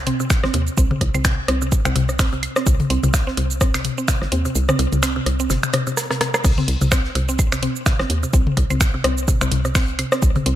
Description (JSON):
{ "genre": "minimal techno", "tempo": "127 BPM", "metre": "4/4", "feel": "swing 57% on 16ths", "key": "C minor", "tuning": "A4 = 439 Hz", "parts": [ { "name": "hollow knocking FM bass", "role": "bass", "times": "0.0-10.5 s", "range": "G1 to Eb2", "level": "-23 LUFS", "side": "equal", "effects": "sidechain pumping" }, { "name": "mallet-like synth pluck", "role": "riff", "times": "0.1-10.5 s", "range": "C3 to C4", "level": "-25 LUFS", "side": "right 1 dB", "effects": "chorus, sidechain pumping, ping-pong delay" }, { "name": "damped 70s drum kit", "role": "drums", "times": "0.1-10.6 s", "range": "hi-hat, snare drum", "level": "-35 LUFS", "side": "left 4 dB", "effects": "sidechain pumping on hats, high-pass filter on hats, high-pass filter on snare, high-pass filter on room" }, { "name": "house drum kit", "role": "drums", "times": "0.1-10.6 s", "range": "crash cymbal, finger snaps, hi-hat, rim click, shaker", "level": "-24 LUFS", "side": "right 2 dB", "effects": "none" }, { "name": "booming analog drum machine", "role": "percussion", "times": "0.1-10.4 s", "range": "rim click, toms, woodblock", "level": "-23 LUFS", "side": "left 2 dB", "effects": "none" }, { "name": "electronic kick drum", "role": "drums", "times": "0.3-10.3 s", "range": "none", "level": "-18 LUFS", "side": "equal", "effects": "none" } ], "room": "little or no reverb", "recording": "none", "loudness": "-17 LUFS", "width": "side -12 dB against mid", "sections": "0.0-10.6 A section", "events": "kick drops out 4.6-6.4; drum fill 6.0-6.4", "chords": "none" }